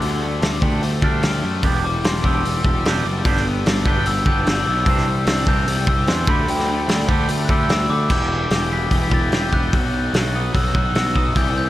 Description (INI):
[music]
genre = indie rock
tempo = 148 BPM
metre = 4/4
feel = straight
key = unclear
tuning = A4 = 440 Hz
[part]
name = glockenspiel with rubber mallets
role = melody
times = 0.0-11.7 s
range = G5 to B6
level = -24 LUFS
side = left 1 dB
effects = diffuse ambient delay
[part]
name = overdriven electric guitar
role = riff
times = 0.0-11.7 s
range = E2 to G4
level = -28 LUFS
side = left 7 dB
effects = lush chorus
[part]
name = twangy electric guitar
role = riff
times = 0.0-11.7 s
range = E3 to G4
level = -27 LUFS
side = right 5 dB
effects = lush chorus, diffuse ambient delay
[part]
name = fuzz picked electric bass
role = bass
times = 0.0-11.7 s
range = E1 to F#2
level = -22 LUFS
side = equal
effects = overdrive
[part]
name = loose indie drum kit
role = drums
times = 0.0-11.5 s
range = crash cymbal, hi-hat, kick drum, snare drum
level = -20 LUFS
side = equal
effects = none
[part]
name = combo organ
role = sustained chords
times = 1.6-8.1, 11.4-11.7 s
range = E4 to D6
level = -36 LUFS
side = equal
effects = none
[sound]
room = moderate huge ambient reverb, RT60 4.4 s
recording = dreamy mix soaked in reverb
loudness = -16 LUFS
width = side -14 dB against mid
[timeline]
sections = 0.0-8.1 A section; 8.1-11.7 B section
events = glockenspiel solo 0.0-8.1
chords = 0.0 Dsus4; 1.6 Em7; 3.3 G; 4.9 Cadd9; 6.3 Dsus4; 8.1 Em; 9.7 B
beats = | 0.02 0.42 0.83 1.23 | 1.64 2.04 2.44 2.85 | 3.25 3.66 4.06 4.47 | 4.87 5.28 5.68 6.09 | 6.49 6.90 7.30 7.71 | 8.12 8.52 8.93 9.33 | 9.74 10.15 10.55 10.96 | 11.36